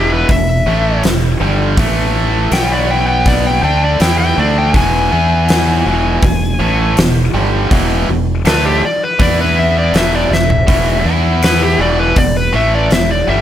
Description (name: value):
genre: blues rock power trio and southern rock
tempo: 81 BPM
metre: 4/4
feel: straight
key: unclear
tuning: A4 = 441 Hz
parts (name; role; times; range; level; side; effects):
- overdriven slide guitar; melody; 0.0-13.4 s; G4 to G#5; -16 LUFS; left 2 dB; none
- tight distorted guitar; riff; 0.0-13.4 s; E2 to E4; -16 LUFS; right 1 dB; distortion
- growling fingered electric bass; bass; 0.0-13.4 s; E1 to E2; -16 LUFS; equal; overdrive
- huge arena drum kit; drums; 0.3-13.1 s; hi-hat, kick drum, snare drum, toms; -17 LUFS; equal; none
room: light reverb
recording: none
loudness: -11 LUFS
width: side -11 dB against mid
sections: 0.0-13.4 A section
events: electric slide guitar solo 0.0-13.4; drum fill 10.3-10.7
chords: 0.0 E5; 1.8 A5; 2.5 B5; 3.6 E